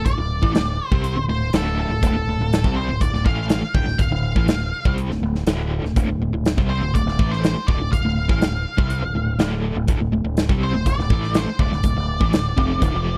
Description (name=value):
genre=classic rock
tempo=122 BPM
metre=4/4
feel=straight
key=D minor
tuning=A4 = 440 Hz
part: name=octave-fuzz lead guitar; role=melody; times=0.0-13.2 s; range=A4 to G5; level=-29 LUFS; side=equal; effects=distortion
part: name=crunchy overdriven guitar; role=riff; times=0.0-13.2 s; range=D2 to C4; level=-26 LUFS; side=equal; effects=tremolo
part: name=growling fingered electric bass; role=bass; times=0.0-13.2 s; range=D1 to C2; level=-26 LUFS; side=equal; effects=overdrive, tube saturation
part: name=big rock drum kit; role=drums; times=0.1-12.9 s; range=hi-hat, kick drum, snare drum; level=-24 LUFS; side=equal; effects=none
room=little or no reverb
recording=dry, close 1970s-style studio recording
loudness=-21 LUFS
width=mono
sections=0.0-13.2 A section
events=none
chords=0.0 Dm